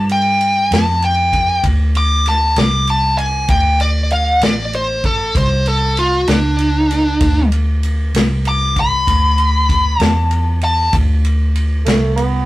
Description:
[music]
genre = slow blues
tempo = 65 BPM (dotted quarters)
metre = 12/8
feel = straight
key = unclear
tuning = A4 = 445 Hz
[part]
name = smooth overdriven lead guitar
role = melody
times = 0.0-10.9 s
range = D4 to D6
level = -15 LUFS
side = left 1 dB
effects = none
[part]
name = vintage muted fingered electric bass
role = bass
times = 0.0-12.5 s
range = A1 to G2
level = -16 LUFS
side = equal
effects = none
[part]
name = warm soul drum kit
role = drums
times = 0.1-12.3 s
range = kick drum, ride cymbal, snare drum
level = -20 LUFS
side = equal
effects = none
[part]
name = breathy tenor saxophone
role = second line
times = 11.9-12.5 s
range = A3 to B3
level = -18 LUFS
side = right 4 dB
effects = none
[sound]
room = moderate studio reverb, RT60 0.6 s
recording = rough rehearsal-room recording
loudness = -12 LUFS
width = side -17 dB against mid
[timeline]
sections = 0.0-10.9 A section; 10.9-12.5 A section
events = lead electric guitar solo 0.0-10.9; tenor saxophone solo 10.9-12.5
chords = 0.0 G5; 3.5 D5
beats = 0.71 1.64 2.57 | 3.50 4.42 5.35 6.28 | 7.21 8.14 9.07 10.00 | 10.93 11.85

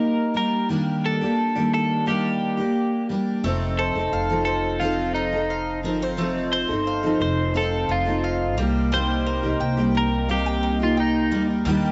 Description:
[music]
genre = acoustic pop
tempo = 88 BPM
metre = 4/4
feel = straight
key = unclear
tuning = A4 = 440 Hz
[part]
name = twelve-string electric guitar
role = melody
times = 0.0-11.5 s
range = Eb4 to C5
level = -28 LUFS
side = equal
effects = cassette tape
[part]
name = picked steel-string acoustic guitar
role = accompaniment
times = 0.0-11.9 s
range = C3 to A4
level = -25 LUFS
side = equal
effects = double-tracked, cassette tape
[part]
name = bowl-back mandolin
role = arpeggios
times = 3.4-11.9 s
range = G3 to G5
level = -34 LUFS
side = equal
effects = cassette tape
[part]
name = upright bass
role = bass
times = 3.4-11.9 s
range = F1 to Eb2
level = -30 LUFS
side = equal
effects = none
[sound]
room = moderate lush hall reverb, RT60 2.5 s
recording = home recording on cassette, nothing above 7.8 kHz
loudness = -23 LUFS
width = mono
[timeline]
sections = 0.0-11.9 A section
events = none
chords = 0.0 Cm7 (rootless); 0.7 Ebmaj7; 3.4 F7; 8.6 Cm7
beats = 0.01 | 0.70 1.39 2.07 2.76 | 3.44 4.13 4.81 5.50 | 6.18 6.87 7.55 8.24 | 8.92 9.61 10.29 10.98 | 11.66

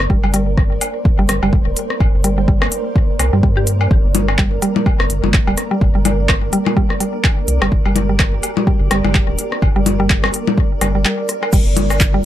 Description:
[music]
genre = minimal techno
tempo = 126 BPM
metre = 4/4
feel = swing 58% on 16ths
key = G minor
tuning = A4 = 440 Hz
[part]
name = rubbery square bass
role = bass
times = 0.0-12.2 s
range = D1 to G2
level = -18 LUFS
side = equal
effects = sidechain pumping
[part]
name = electronic rim click, woodblock and congas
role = percussion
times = 0.0-12.0 s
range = none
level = -20 LUFS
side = left 3 dB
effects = ping-pong delay
[part]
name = flickering grainy texture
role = texture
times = 0.0-11.6 s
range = Bb3 to C5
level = -30 LUFS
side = right 2 dB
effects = built-in reverb, sidechain pumping
[part]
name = granular cloud pad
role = texture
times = 0.0-12.2 s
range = F4 to D5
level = -25 LUFS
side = right 2 dB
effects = built-in reverb, sidechain pumping
[part]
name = mallet-like synth pluck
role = riff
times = 0.1-12.2 s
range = G3 to G4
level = -21 LUFS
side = right 1 dB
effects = chorus, sidechain pumping, ping-pong delay
[part]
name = electronic kick drum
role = drums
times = 0.1-12.1 s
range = none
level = -15 LUFS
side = equal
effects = overdrive
[part]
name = minimal click drum kit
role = drums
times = 0.3-12.1 s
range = crash cymbal, handclaps, hi-hat, rim click, shaker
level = -20 LUFS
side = equal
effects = overdrive
[sound]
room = light reverb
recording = lossy compression artefacts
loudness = -13 LUFS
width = side -12 dB against mid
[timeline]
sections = 0.0-11.5 A section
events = break 11.1-11.5; drum fill 11.3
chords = 0.0 Gm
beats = | 0.10 0.57 1.05 1.53 | 2.00 2.48 2.96 3.43 | 3.91 4.38 4.86 5.34 | 5.81 6.29 6.77 7.24 | 7.72 8.19 8.67 9.15 | 9.62 10.10 10.57 11.05 | 11.53 12.00

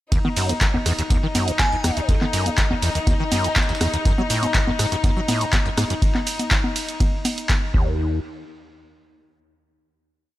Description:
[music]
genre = acid house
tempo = 122 BPM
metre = 4/4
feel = straight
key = Eb phrygian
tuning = A4 = 445 Hz
[part]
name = warm chamber string section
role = sustained chords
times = 0.1-7.7 s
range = Eb4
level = -28 LUFS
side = left 4 dB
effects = sidechain pumping
[part]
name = acid bass, saw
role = riff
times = 0.1-8.2 s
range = Eb2 to Gb3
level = -24 LUFS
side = equal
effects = overdrive, ensemble chorus, sidechain pumping, digital delay
[part]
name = dusty soul sampler-style drum kit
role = drums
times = 0.1-5.9 s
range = hi-hat, snare drum, tambourine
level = -35 LUFS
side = left 1 dB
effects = none
[part]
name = electronic kick drum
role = drums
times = 0.1-7.8 s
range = none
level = -21 LUFS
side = equal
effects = small room ambience
[part]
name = punchy analog drum machine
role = drums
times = 0.1-7.6 s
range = congas, handclaps, hi-hat, ride cymbal, rim click, shaker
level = -24 LUFS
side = right 1 dB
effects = small room ambience
[part]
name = glassy synth bell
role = melody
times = 1.6-2.0 s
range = Ab5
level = -29 LUFS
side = right 1 dB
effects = chorus, dub echo
[sound]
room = digital ambience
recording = none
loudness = -18 LUFS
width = side -15 dB against mid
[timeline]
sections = 0.1-8.0 drop; 8.0-10.4 final hit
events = drop 0.1-8.0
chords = 0.1 Ebm; 4.1 N.C.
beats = | 0.12 0.61 1.10 1.59 | 2.09 2.58 3.07 3.56 | 4.05 4.54 5.04 5.53 | 6.02 6.51 7.00 7.50 | 7.99

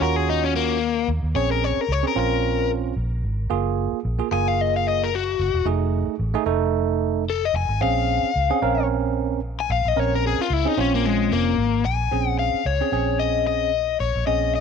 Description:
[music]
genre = straight-eighth soul blues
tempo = 111 BPM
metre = 4/4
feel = swing 56% on 16ths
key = Bb minor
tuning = A4 = 441 Hz
[part]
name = crunchy overdriven guitar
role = melody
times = 0.0-14.6 s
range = Ab3 to Ab5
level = -22 LUFS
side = left 11 dB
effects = none
[part]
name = bell-like tine electric piano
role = accompaniment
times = 0.0-14.6 s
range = A3 to Bb4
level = -25 LUFS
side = right 16 dB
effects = none
[part]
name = vintage muted fingered electric bass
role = bass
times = 0.0-14.6 s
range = E1 to Eb2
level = -25 LUFS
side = right 1 dB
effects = none
[sound]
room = light reverb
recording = 1960s-style stereo with parts hard left and right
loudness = -20 LUFS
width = side -6 dB against mid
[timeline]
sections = 0.0-12.1 A section; 12.1-14.6 B section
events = overdriven electric guitar solo 0.0-12.1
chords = 0.0 Ebm7; 1.4 Bbm7; 3.5 Gbmaj7; 5.7 F7#9; 7.8 Bbm7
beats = 0.27 0.81 | 1.35 1.89 2.43 2.97 | 3.50 4.04 4.58 5.12 | 5.66 6.20 6.74 7.27 | 7.81 8.35 8.89 9.43 | 9.97 10.50 11.04 11.58 | 12.12 12.66 13.20 13.74 | 14.28

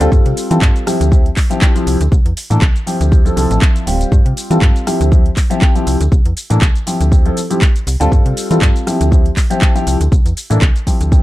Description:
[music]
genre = filtered disco house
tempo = 120 BPM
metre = 4/4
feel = swing 55% on 16ths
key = D minor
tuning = A4 = 440 Hz
[part]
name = dark grand piano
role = accompaniment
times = 0.0-11.2 s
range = E3 to A4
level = -17 LUFS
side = left 1 dB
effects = phaser, sidechain pumping
[part]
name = slap-like FM bass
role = bass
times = 0.0-11.2 s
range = D1 to E3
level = -15 LUFS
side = equal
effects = sidechain pumping
[part]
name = house drum kit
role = drums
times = 0.0-11.2 s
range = handclaps, hi-hat, rim click, shaker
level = -22 LUFS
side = equal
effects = sidechain pumping on hats, sidechain pumping on cymbals, sidechain pumping on perc
[part]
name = electronic kick drum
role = drums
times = 0.1-11.2 s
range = none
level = -11 LUFS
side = equal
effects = none
[sound]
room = little or no reverb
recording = dark, warm production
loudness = -11 LUFS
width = side -16 dB against mid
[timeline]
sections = 0.0-11.2 A section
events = none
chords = 0.1 G9sus4; 0.9 Dm11; 2.1 C13; 2.9 Dm11; 4.1 G9sus4; 4.9 Dm11; 6.1 C13; 6.9 Dm11; 8.1 G9sus4; 8.9 Dm11; 10.1 C13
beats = | 0.12 0.62 1.12 1.62 | 2.12 2.62 3.12 3.62 | 4.12 4.62 5.12 5.62 | 6.12 6.62 7.12 7.62 | 8.12 8.62 9.12 9.62 | 10.12 10.62 11.12

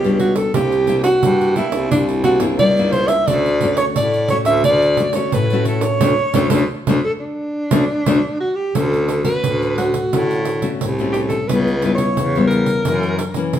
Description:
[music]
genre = samba and choro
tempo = 88 BPM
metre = 4/4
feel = straight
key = D major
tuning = A4 = 440 Hz
[part]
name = breathy alto saxophone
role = melody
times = 0.0-13.5 s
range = D4 to E5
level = -18 LUFS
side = right 1 dB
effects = none
[part]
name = nylon-string guitar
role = accompaniment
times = 0.0-13.6 s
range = F#2 to F#4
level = -20 LUFS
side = left 4 dB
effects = none
[part]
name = warm baritone saxophone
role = bass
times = 0.0-13.6 s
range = C2 to A2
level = -22 LUFS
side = equal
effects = none
[part]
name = pandeiro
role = percussion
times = 0.0-13.6 s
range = none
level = -23 LUFS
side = right 5 dB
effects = none
[sound]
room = moderate large studio reverb, RT60 1.2 s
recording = band playing live in one room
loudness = -15 LUFS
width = side -10 dB against mid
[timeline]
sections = 0.0-8.8 A section; 8.8-13.6 B section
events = band accent 6.0-8.8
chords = 0.0 Em9 (rootless); 0.6 C9; 3.3 Dmaj7; 11.5 C#m7b5; 12.9 F#7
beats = | 0.55 1.24 1.92 2.60 | 3.29 3.97 4.66 5.34 | 6.02 6.71 7.39 8.07 | 8.76 9.44 10.13 10.81 | 11.49 12.18 12.86 13.55

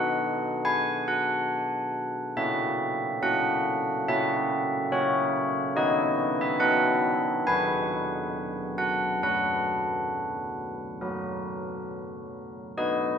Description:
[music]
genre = classical, tune for church bells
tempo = 70 BPM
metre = 4/4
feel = straight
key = B major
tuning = A4 = 440 Hz
[part]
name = carillon bells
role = solo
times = 0.0-13.2 s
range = D#3 to G#5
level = -25 LUFS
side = equal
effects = none
[sound]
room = wet scoring stage reverb, RT60 1.7 s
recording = minimal, uncompressed stereo recording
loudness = -24 LUFS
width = side -7 dB against mid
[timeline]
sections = 0.0-13.2 A section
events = none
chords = 0.0 B; 2.4 F#7/A#; 5.8 B; 7.5 B/D#; 9.2 F#sus4; 11.0 F#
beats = 0.64 1.50 | 2.35 3.22 4.07 4.91 | 5.76 6.61 7.47 8.34 | 9.22 10.11 11.00 11.88 | 12.77

